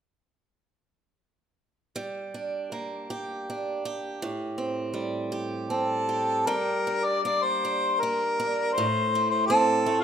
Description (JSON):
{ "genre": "celtic folk, Celtic slow air", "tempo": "79 BPM", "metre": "3/4", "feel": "uneven beats, rubato", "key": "G minor", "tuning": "A4 = 440 Hz", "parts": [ { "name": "picked swing-style acoustic guitar", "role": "accompaniment", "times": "2.0-10.0 s", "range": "A2 to G4", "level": "-29 LUFS", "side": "right 2 dB", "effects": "none" }, { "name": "warm harmonica", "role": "melody", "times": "5.7-10.0 s", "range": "F4 to D5", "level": "-24 LUFS", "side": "left 1 dB", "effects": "none" } ], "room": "moderate recital hall reverb, RT60 1.5 s", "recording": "minimal, uncompressed stereo recording", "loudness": "-25 LUFS", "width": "side -8 dB against mid", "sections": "2.0-6.5 A section; 6.5-10.0 B section", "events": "none", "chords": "2.0 Gm; 4.2 Am7; 6.5 Gm; 8.8 Am" }